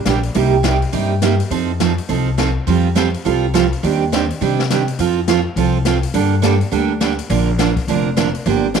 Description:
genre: country, western swing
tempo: 207 BPM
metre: 4/4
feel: swing 61% on 8ths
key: Bb major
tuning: A4 = 440 Hz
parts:
  - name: picked steel-string acoustic guitar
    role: accompaniment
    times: 0.1-8.8 s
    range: C3 to Bb4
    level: -17 LUFS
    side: right 10 dB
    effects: none
  - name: upright bass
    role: bass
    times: 0.1-8.8 s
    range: F1 to C3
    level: -19 LUFS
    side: left 3 dB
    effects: none
  - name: swinging big-band drum kit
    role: drums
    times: 0.1-8.8 s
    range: hi-hat, kick drum, snare drum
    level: -25 LUFS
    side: left 10 dB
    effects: none
room: light reverb, studio reverb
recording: 1960s-style stereo with parts hard left and right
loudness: -14 LUFS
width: side -6 dB against mid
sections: 0.0-8.8 A section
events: none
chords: 0.4 Cm7; 1.5 F7; 2.7 Fadd9; 3.8 Cmadd9/Eb; 5.0 F; 6.1 Gmadd9; 7.3 Bb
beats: 0.06 | 0.35 0.64 0.93 1.22 | 1.51 1.80 2.09 2.38 | 2.67 2.96 3.25 3.54 | 3.83 4.12 4.41 4.70 | 4.99 5.28 5.57 5.86 | 6.15 6.44 6.72 7.01 | 7.30 7.59 7.88 8.17 | 8.46 8.75

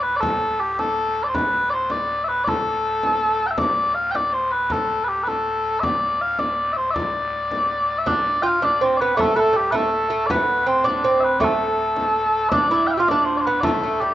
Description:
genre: medieval dance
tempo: 107 BPM (dotted quarters)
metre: 6/8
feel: straight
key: unclear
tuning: A4 = 439 Hz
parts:
  - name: mellow small bagpipes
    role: melody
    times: 0.0-14.1 s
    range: G4 to G5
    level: -19 LUFS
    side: left 1 dB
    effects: none
  - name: pipe organ, clarinet reed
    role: drone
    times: 0.0-14.1 s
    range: D2 to A2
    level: -35 LUFS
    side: equal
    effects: none
  - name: frame drum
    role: percussion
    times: 0.0-13.8 s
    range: none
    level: -29 LUFS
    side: equal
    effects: none
  - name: lute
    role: second line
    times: 8.1-14.1 s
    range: G3 to G4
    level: -21 LUFS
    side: right 3 dB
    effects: none
room: moderate lush hall reverb, RT60 2.4 s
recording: rough home demo mix, nothing above 7.6 kHz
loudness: -18 LUFS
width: side -13 dB against mid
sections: 0.0-8.1 A section; 8.1-14.1 A section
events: none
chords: none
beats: | 0.23 0.79 | 1.35 1.91 | 2.47 3.03 | 3.59 4.15 | 4.71 5.26 | 5.82 6.38 | 6.94 7.50 | 8.06 8.62 | 9.17 9.73 | 10.29 10.85 | 11.40 11.96 | 12.52 13.07 | 13.63

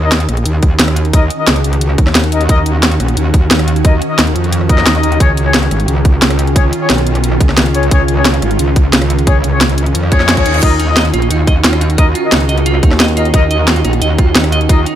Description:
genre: dark technical drum and bass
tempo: 177 BPM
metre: 4/4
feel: straight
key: Eb minor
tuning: A4 = 440 Hz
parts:
  - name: swarming drone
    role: sustained chords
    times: 0.6-15.0 s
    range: Eb3 to Gb4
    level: -20 LUFS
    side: right 1 dB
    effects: built-in reverb, sidechain pumping
  - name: mellow brass ensemble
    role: stabs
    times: 0.0-14.8 s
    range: Db4 to Eb5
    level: -18 LUFS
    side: left 5 dB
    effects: digital delay
  - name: metallic wobble bass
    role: bass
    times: 0.0-14.8 s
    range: Ab1 to F2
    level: -14 LUFS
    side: equal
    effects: distortion, chorus, overdrive, sidechain pumping
  - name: drum and bass drum kit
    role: drums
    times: 0.1-14.9 s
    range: crash cymbal, hi-hat, rim click, snare drum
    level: -14 LUFS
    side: equal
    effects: overdrive, studio reverb
  - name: electronic kick drum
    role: drums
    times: 0.6-14.8 s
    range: none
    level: -10 LUFS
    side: equal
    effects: overdrive, studio reverb
  - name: reverse cymbal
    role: sound effects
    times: 10.1-10.6 s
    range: none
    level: -23 LUFS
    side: right 6 dB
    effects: none
  - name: clean electric guitar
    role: arpeggios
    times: 10.6-14.9 s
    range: Eb4 to Eb5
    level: -18 LUFS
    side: right 6 dB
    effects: sidechain pumping, digital delay
  - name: growling FM bass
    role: bass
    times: 12.8-13.3 s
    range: Eb2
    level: -14 LUFS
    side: equal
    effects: none
room: little or no reverb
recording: none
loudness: -9 LUFS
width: side -11 dB against mid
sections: 0.0-15.0 A section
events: reverse cymbal 10.1-10.6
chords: 0.0 Ebm7; 5.2 Dbadd9; 10.6 Ebm7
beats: 0.12 0.46 0.80 | 1.14 1.47 1.81 2.15 | 2.49 2.83 3.17 3.51 | 3.85 4.19 4.53 4.86 | 5.20 5.54 5.88 6.22 | 6.56 6.90 7.24 7.58 | 7.91 8.25 8.59 8.93 | 9.27 9.61 9.95 10.29 | 10.63 10.96 11.30 11.64 | 11.98 12.32 12.66 13.00 | 13.34 13.68 14.02 14.36 | 14.69

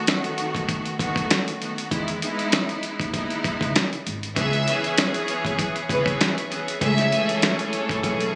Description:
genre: hip hop, boom-bap hip-hop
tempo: 98 BPM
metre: 4/4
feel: swing 56% on 16ths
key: unclear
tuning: A4 = 440 Hz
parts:
  - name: clear studio string section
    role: accompaniment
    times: 0.0-8.4 s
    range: C#2 to G#4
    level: -29 LUFS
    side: equal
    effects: cassette tape, high-pass filter, low-pass filter
  - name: dusty soul sampler-style drum kit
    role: drums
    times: 0.1-8.3 s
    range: hi-hat, kick drum, snare drum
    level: -27 LUFS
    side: equal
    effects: vintage 12-bit sampler grit
  - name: upright bass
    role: bass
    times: 1.9-8.4 s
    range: G#1 to E2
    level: -32 LUFS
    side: equal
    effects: none
  - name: rich studio violin section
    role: melody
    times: 4.4-7.9 s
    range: B4 to E5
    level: -30 LUFS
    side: equal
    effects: high-pass filter, low-pass filter
  - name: bright tonewheel organ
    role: sustained chords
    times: 4.4-8.4 s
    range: A3 to C#6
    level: -34 LUFS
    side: equal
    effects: overdrive, slow rotary speaker, high-pass filter, low-pass filter
  - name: clear horn section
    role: stabs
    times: 4.4-8.4 s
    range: E3 to A4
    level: -33 LUFS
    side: equal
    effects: high-pass filter, low-pass filter, delay
room: light reverb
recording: recorded on a phone in the room, club reverb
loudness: -24 LUFS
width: mono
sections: 0.0-4.4 A section; 4.4-8.4 B section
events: break 0.0-1.9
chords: 0.0 B7; 1.9 Emaj7; 4.4 C#m7; 6.8 Amaj7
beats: 0.08 0.69 1.30 | 1.92 2.53 3.14 3.75 | 4.36 4.98 5.59 6.20 | 6.81 7.42 8.04

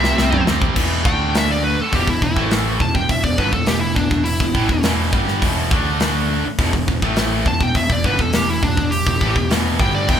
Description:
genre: heavy metal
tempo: 103 BPM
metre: 4/4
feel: straight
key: E minor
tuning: A4 = 440 Hz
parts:
  - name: high-gain lead guitar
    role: melody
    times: 0.0-10.2 s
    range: D4 to A5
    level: -21 LUFS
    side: equal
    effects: distortion
  - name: distorted electric guitar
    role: riff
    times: 0.0-0.7, 10.1-10.2 s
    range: E2 to C4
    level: -27 LUFS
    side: left 1 dB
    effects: none
  - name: high-gain distorted guitar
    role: riff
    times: 0.0-10.2 s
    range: E2 to D4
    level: -24 LUFS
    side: left 6 dB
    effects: distortion
  - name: high-gain distorted guitar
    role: riff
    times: 0.0-10.2 s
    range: E2 to D4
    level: -24 LUFS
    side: right 6 dB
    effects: distortion
  - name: overdriven picked electric bass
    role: bass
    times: 0.0-10.2 s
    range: E1 to D2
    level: -23 LUFS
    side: equal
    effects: none
  - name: tight metal drum kit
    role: drums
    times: 0.0-10.2 s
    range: crash cymbal, hi-hat, kick drum, snare drum, toms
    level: -20 LUFS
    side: equal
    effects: none
room: light reverb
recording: band playing live in one room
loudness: -15 LUFS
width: side -9 dB against mid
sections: 0.8-10.2 A section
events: drum fill 0.0-0.8; lead electric guitar solo 0.8-10.2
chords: 0.0 C; 0.8 E5; 1.1 D5; 1.8 Em; 5.7 D5; 6.4 Em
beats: 0.18 | 0.76 1.34 1.93 2.51 | 3.09 3.68 4.26 4.84 | 5.43 6.01 6.59 7.18 | 7.76 8.34 8.93 9.51 | 10.09

